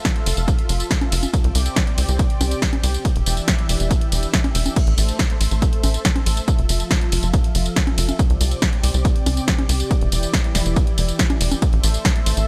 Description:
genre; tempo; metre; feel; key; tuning
uplifting trance; 140 BPM; 4/4; straight; A minor; A4 = 440 Hz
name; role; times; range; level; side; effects
analog string pad; sustained chords; 0.0-12.5 s; C3 to E5; -31 LUFS; equal; ensemble chorus, sidechain pumping
electronic kick drum; drums; 0.0-12.1 s; none; -22 LUFS; equal; none
punchy analog drum machine; drums; 0.1-12.5 s; congas, crash cymbal, hi-hat, ride cymbal, snare drum, tambourine; -26 LUFS; equal; none
tight sequencer bass; bass; 0.3-12.5 s; E1 to C2; -22 LUFS; equal; sidechain pumping
room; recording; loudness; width
digital ambience; none; -19 LUFS; mono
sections
0.0-12.5 A section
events
none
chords
0.0 Fmaj7; 1.3 Csus2; 3.0 Em7; 4.8 Am; 6.5 Fmaj7; 8.2 Csus2; 9.9 Em7; 11.6 Am

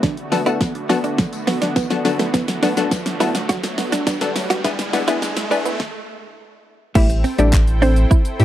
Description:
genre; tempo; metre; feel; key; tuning
dance-pop; 104 BPM; 4/4; straight; A dorian; A4 = 439 Hz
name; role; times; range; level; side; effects
wavetable chord stab; accompaniment; 0.0-8.4 s; D3 to A4; -21 LUFS; left 5 dB; sidechain pumping
lush unison pad; sustained chords; 0.0-8.4 s; D3 to G5; -28 LUFS; right 1 dB; chorus, sidechain pumping
tight sequenced synth; arpeggios; 0.0-5.8 s; D3 to E4; -30 LUFS; right 2 dB; chorus, phaser, sidechain pumping, slapback echo
direct-recorded clean electric guitar; riff; 0.0-8.4 s; A3 to F#4; -22 LUFS; right 3 dB; analog chorus
pop drum kit; drums; 0.0-8.4 s; crash cymbal, handclaps, hi-hat, kick drum, shaker, snare drum; -20 LUFS; equal; none
tambourine; percussion; 0.0-5.8 s; none; -39 LUFS; left 16 dB; none
riser; sound effects; 0.2-5.8 s; none; -30 LUFS; right 2 dB; none
mallet-like synth pluck; melody; 7.0-8.4 s; C4 to E5; -21 LUFS; right 1 dB; chorus, slapback echo
warm sub bass; bass; 7.0-8.4 s; A1 to A2; -15 LUFS; equal; sidechain pumping
room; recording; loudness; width
little or no reverb; dry, close 1970s-style studio recording, high-pass filter; -16 LUFS; side -12 dB against mid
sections
0.0-7.0 A section; 7.0-8.4 B section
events
build-up 0.0-7.0; drum fill 0.0-5.8; filter sweep 0.0-7.0; riser 0.2-7.0; stop 5.8-7.0; drop 7.0-8.4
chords
0.0 D6; 4.6 E7; 7.0 Am7

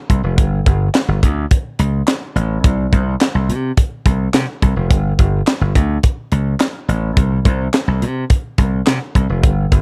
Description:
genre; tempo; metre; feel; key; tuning
early-eighties boogie funk; 106 BPM; 4/4; straight; unclear; A4 = 437 Hz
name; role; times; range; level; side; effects
slap bass; bass; 0.1-9.8 s; F1 to C3; -18 LUFS; equal; none
tight funk drum kit; drums; 0.1-9.8 s; handclaps, hi-hat, kick drum, snare drum; -17 LUFS; equal; none
room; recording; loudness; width
little or no reverb; dark, warm production; -16 LUFS; mono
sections
0.0-9.8 A section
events
none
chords
none

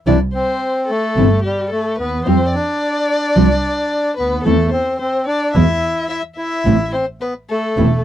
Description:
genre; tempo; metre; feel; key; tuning
tango; 109 BPM; 4/4; rubato; A minor; A4 = 440 Hz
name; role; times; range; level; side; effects
bandoneon; melody; 0.1-8.0 s; G3 to E4; -19 LUFS; equal; none
dark violin; second line; 0.1-8.0 s; G4 to E5; -22 LUFS; left 3 dB; none
nylon-string guitar; accompaniment; 0.1-7.9 s; B2 to F4; -14 LUFS; equal; none
warm double bass; bass; 0.1-8.0 s; E1 to F2; -18 LUFS; right 2 dB; none
room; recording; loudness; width
light reverb; dry, close 1970s-style studio recording; -15 LUFS; side -11 dB against mid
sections
0.0-8.0 A section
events
none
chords
0.1 C; 2.3 Fsus2; 4.5 Am/E; 5.6 E5; 6.7 Amadd9

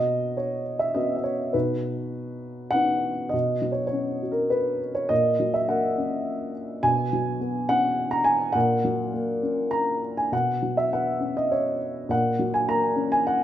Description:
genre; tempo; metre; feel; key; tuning
classical, lyrical solo piano; 102 BPM; 3/4; rubato; B major; A4 = 439 Hz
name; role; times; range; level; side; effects
dark upright piano; solo; 0.0-13.4 s; A#2 to A#5; -22 LUFS; equal; none
room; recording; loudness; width
moderate recital hall reverb, RT60 1.3 s; minimal, uncompressed stereo recording; -22 LUFS; side -11 dB against mid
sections
0.0-3.3 A section; 3.3-13.4 B section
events
none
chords
0.0 Bsus2; 1.5 Badd9; 3.3 Bsus2; 5.1 F#/A#; 6.8 Bsus2; 8.6 F#/A#; 10.3 Bsus2; 12.1 F#/A#

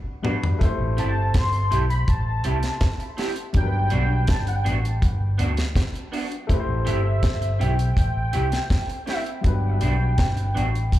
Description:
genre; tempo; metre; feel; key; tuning
lovers rock reggae; 82 BPM; 4/4; straight; G major; A4 = 440 Hz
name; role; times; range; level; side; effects
warm baby grand piano; accompaniment; 0.0-11.0 s; F#3 to C5; -32 LUFS; left 3 dB; dub echo, slapback echo
electric guitar through a small old amp; stabs; 0.2-10.7 s; B3 to G4; -31 LUFS; right 4 dB; analog chorus, slapback echo
deep reggae drum kit; drums; 0.2-11.0 s; hi-hat, kick drum, snare drum, toms; -23 LUFS; equal; none
vintage muted fingered electric bass; bass; 0.8-11.0 s; G1 to D2; -22 LUFS; equal; none
warm velvety synth lead; melody; 1.0-11.0 s; E5 to C6; -29 LUFS; left 1 dB; chorus, tape echo, slapback echo
room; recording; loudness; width
small room reverb; live gig heard through the venue's PA, club reverb; -20 LUFS; side -14 dB against mid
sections
0.0-11.0 A section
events
drum fill 0.0-0.6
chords
0.0 Gmaj7; 0.6 Am7; 3.5 Gmaj7; 6.5 Am7; 9.4 Gmaj7

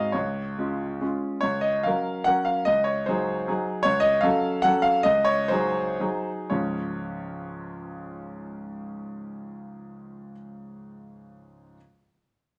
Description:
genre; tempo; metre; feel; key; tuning
classical, romantic triple-time dance for piano with dotted rhythms; 108-170 BPM; 3/4; rubato; Db major; A4 = 440 Hz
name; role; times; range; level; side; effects
clear grand piano; solo; 0.0-11.8 s; Db2 to Gb5; -26 LUFS; equal; none
room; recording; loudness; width
moderate large studio reverb, RT60 1.0 s; none; -25 LUFS; mono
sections
0.0-1.4 A section; 1.4-6.5 B section; 6.5-9.6 C section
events
slowing down 3.3-6.5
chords
0.1 Db; 1.4 Gb/Db; 2.7 Ab7/Db; 3.8 Gbm/Db; 5.0 Ab7/Db; 6.5 Db

